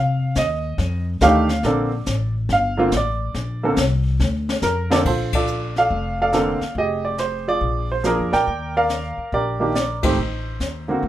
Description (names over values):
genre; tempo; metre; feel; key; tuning
jazz piano trio; 141 BPM; 4/4; swing 66% on 8ths; Bb major; A4 = 442 Hz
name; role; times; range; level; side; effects
warm upright piano; melody; 0.0-11.0 s; D3 to G5; -19 LUFS; right 2 dB; none
upright bass; bass; 0.0-11.1 s; F1 to C3; -23 LUFS; left 1 dB; none
jazz brush drum kit; drums; 0.4-11.1 s; brushed snare drum, crash cymbal, hi-hat, kick drum, ride cymbal, snare drum; -26 LUFS; left 3 dB; none
room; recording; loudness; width
light reverb; minimal, uncompressed stereo recording; -18 LUFS; side -13 dB against mid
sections
0.0-5.1 A section; 5.1-11.1 B section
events
upright piano solo 0.0-5.1; drum fill 4.2-5.1; band accent 5.3, 10.0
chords
0.0 Cmadd11; 0.8 F13; 1.6 Bbmaj9; 6.8 Fmadd9; 7.6 Bb7; 8.5 Ebmaj7; 10.2 Adim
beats
0.36 0.79 1.22 | 1.64 2.07 2.50 2.92 | 3.35 3.77 4.20 4.63 | 5.05 5.48 5.91 6.33 | 6.76 7.19 7.62 8.04 | 8.47 8.90 9.32 9.75 | 10.18 10.60 11.03